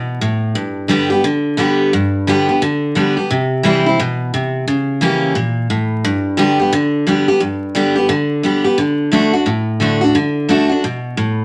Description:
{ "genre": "rock", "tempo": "175 BPM", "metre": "4/4", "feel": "swing 63% on 8ths", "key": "G major", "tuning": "A4 = 438 Hz", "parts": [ { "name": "picked steel-string acoustic guitar", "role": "solo", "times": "0.0-11.4 s", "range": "G2 to G4", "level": "-16 LUFS", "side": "equal", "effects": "none" } ], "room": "moderate studio reverb, RT60 0.7 s", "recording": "vinyl crackle", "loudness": "-16 LUFS", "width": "mono", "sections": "0.0-11.4 A section", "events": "none", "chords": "0.0 N.C.; 0.6 G; 3.3 C; 4.7 C#dim7; 6.0 G; 8.8 D" }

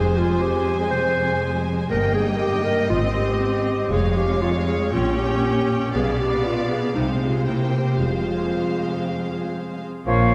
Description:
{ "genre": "classical, dramatic, fast romantic movement for symphony orchestra", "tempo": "119 BPM", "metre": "4/4", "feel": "straight", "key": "F minor", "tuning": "A4 = 438 Hz", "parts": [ { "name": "warm symphonic violin section", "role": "melody", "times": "0.0-10.3 s", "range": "Eb5 to Ab5", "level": "-35 LUFS", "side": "equal", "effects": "none" }, { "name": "mellow clarinet", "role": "second line", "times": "0.0-10.3 s", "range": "Eb4 to C5", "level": "-27 LUFS", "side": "equal", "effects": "none" }, { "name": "warm symphonic violin section", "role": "second line", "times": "0.0-10.3 s", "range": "C5 to Eb5", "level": "-34 LUFS", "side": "equal", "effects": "none" }, { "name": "clear symphonic viola section", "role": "accompaniment", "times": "0.0-10.3 s", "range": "Ab3 to Db4", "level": "-31 LUFS", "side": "equal", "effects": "none" }, { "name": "concert harp", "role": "arpeggios", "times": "0.0-10.3 s", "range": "F2 to Eb5", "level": "-30 LUFS", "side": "equal", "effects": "none" }, { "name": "clear symphonic double bass section", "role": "bass", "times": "0.0-10.3 s", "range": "F1 to C2", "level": "-30 LUFS", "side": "equal", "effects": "none" }, { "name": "warm symphonic cello section", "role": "bass", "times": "0.0-10.3 s", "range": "F2 to Bb3", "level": "-29 LUFS", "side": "equal", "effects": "none" }, { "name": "bright silver concert flute", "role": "second line", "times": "10.1-10.3 s", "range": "F5", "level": "-28 LUFS", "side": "equal", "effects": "none" }, { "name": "warm oboe", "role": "second line", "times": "10.1-10.3 s", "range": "Db5", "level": "-25 LUFS", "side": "equal", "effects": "none" }, { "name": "mellow bassoon", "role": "accompaniment", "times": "10.1-10.3 s", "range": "F3", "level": "-26 LUFS", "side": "equal", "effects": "none" }, { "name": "mellow French horn section", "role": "sustained chords", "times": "10.1-10.3 s", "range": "Db5 to F5", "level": "-28 LUFS", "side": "equal", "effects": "none" } ], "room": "wet concert hall reverb, RT60 2.5 s", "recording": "dark, warm production", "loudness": "-22 LUFS", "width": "mono", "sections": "0.0-10.1 A section", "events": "none", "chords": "0.0 Fm; 1.9 Eb/G; 2.9 Ab; 3.9 Db/F; 4.9 Gdim/Bb; 5.9 Bdim; 7.0 Fm/C; 7.5 C7; 8.0 Fm" }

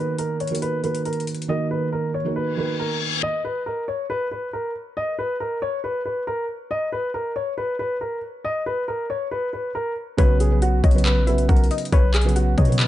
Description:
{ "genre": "hip hop, trap", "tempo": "138 BPM", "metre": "4/4", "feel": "half-time", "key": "unclear", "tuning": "A4 = 440 Hz", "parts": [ { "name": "dark baby grand piano", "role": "melody", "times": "0.0-12.9 s", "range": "F#4 to Eb5", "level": "-25 LUFS", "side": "left 1 dB", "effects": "low-pass filter" }, { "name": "felt-muted upright piano", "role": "accompaniment", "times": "0.0-3.3, 10.2-12.9 s", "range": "C#3 to Db5", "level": "-25 LUFS", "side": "right 4 dB", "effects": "low-pass filter" }, { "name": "trap drum kit", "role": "drums", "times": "0.2-1.5, 10.2-12.9 s", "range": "handclaps, hi-hat, kick drum", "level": "-21 LUFS", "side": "equal", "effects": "overdrive" }, { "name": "reverse cymbal", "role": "sound effects", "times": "2.5-3.2 s", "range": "none", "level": "-27 LUFS", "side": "left 6 dB", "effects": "none" }, { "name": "warbly dusty pluck", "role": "second line", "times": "10.2-12.9 s", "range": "C#5 to F#5", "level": "-30 LUFS", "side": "left 4 dB", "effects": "chorus, tape echo" }, { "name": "warm 808-style bass", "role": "bass", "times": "10.2-12.9 s", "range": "Bb1 to B2", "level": "-19 LUFS", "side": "left 1 dB", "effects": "none" } ], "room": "digital ambience", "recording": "dark, warm production, nothing above 10.3 kHz", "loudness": "-20 LUFS", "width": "side -14 dB against mid", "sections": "0.0-3.2 A section; 3.2-12.9 B section", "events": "reverse cymbal 2.5-3.2", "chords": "0.0 Ebm; 3.2 N.C.; 10.2 Bsus2" }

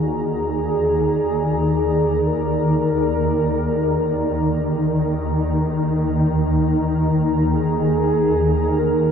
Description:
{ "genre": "dark ambient drone", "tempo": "free time", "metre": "none", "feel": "none", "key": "unclear", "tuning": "A4 = 441 Hz", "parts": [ { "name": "mellow horn-like synth lead", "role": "melody", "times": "0.0-9.1 s", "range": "Ab4 to Bb4", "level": "-22 LUFS", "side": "right 1 dB", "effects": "wide subtle chorus, ping-pong delay" }, { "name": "dark analog pad", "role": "sustained chords", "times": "0.0-9.1 s", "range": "Eb4 to Bb5", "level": "-27 LUFS", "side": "left 1 dB", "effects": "chorus" }, { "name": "tubular bells", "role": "arpeggios", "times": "0.0-9.1 s", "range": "none", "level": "barely audible", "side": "none", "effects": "none" }, { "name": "swarming drone", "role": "drone", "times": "0.0-9.1 s", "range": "Eb2 to Eb3", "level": "-19 LUFS", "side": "equal", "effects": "built-in reverb" } ], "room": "wet huge ambient reverb, RT60 9.1 s", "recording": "dark, warm production", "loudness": "-17 LUFS", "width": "side -7 dB against mid", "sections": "0.0-9.1 A section", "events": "filter sweep on synth drone 0.0-9.1", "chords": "0.0 Eb5" }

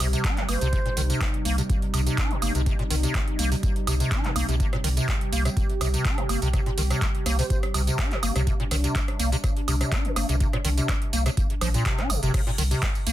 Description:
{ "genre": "acid house", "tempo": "124 BPM", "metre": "4/4", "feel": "straight", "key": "C minor", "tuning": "A4 = 435 Hz", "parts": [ { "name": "warm analog pad", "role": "sustained chords", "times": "0.0-12.3 s", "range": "C3 to G4", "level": "-33 LUFS", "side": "right 1 dB", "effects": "chorus, sidechain pumping" }, { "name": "acid bass, square", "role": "riff", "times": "0.0-13.1 s", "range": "Bb2 to Eb4", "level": "-28 LUFS", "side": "equal", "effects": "overdrive, ensemble chorus, sidechain pumping, tape echo" }, { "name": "saturated sub bass", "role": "bass", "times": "0.0-13.1 s", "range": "G1 to C2", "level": "-25 LUFS", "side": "equal", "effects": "sidechain pumping" }, { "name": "booming analog drum machine", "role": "drums", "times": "0.0-13.1 s", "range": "crash cymbal, handclaps, hi-hat, rim click, tambourine, woodblock", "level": "-30 LUFS", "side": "right 3 dB", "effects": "overdrive" }, { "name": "electronic kick drum", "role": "drums", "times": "0.2-12.9 s", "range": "none", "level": "-26 LUFS", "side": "equal", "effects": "overdrive" }, { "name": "mellow hollow silver concert flute", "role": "melody", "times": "0.5-1.2, 7.4-7.6 s", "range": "C5", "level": "-34 LUFS", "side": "right 3 dB", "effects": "digital delay" } ], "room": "little or no reverb", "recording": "dense, heavily limited modern master", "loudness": "-22 LUFS", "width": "side -13 dB against mid", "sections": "0.0-12.3 A section", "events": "none", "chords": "0.0 C5" }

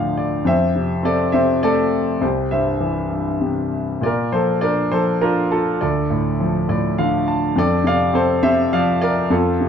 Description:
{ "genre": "classical, lyrical solo piano", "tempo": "102 BPM", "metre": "3/4", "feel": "rubato", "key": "F major", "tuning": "A4 = 442 Hz", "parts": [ { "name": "clear concert grand piano", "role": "solo", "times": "0.0-9.7 s", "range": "C2 to A5", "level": "-16 LUFS", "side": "equal", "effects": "none" } ], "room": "moderate recital hall reverb, RT60 1.4 s", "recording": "dark, warm production", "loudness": "-16 LUFS", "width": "side -7 dB against mid", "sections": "0.0-9.7 A section", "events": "grand piano fill 0.0-0.5, 6.4-7.6", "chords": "0.5 F6; 2.2 C; 4.0 Bbmaj7; 5.8 Dm; 7.6 F6" }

